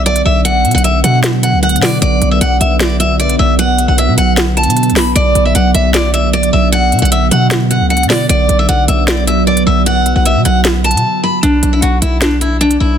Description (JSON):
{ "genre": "hip hop, trap", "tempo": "153 BPM", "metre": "4/4", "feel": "half-time", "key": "B minor", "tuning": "A4 = 439 Hz", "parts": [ { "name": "deep dark ambient pad", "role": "sustained chords", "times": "0.0-11.4 s", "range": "D3 to B3", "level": "-17 LUFS", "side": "right 3 dB", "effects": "chorus, built-in reverb" }, { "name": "hard-hitting 808-style bass", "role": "bass", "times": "0.0-13.0 s", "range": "B1 to B2", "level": "-14 LUFS", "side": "equal", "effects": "none" }, { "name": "picked steel-string acoustic guitar", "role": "melody", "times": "0.1-13.0 s", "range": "D4 to B5", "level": "-14 LUFS", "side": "equal", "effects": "low-pass filter, digital delay" }, { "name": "trap drum kit", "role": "drums", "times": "0.1-12.8 s", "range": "hi-hat, snare drum", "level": "-17 LUFS", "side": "equal", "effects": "none" } ], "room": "little or no reverb", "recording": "dense, heavily limited modern master", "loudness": "-9 LUFS", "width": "side -8 dB against mid", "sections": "0.0-11.4 A section; 11.4-13.0 B section", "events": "break 11.0-11.4", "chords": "0.0 Bm; 11.4 Bmadd11" }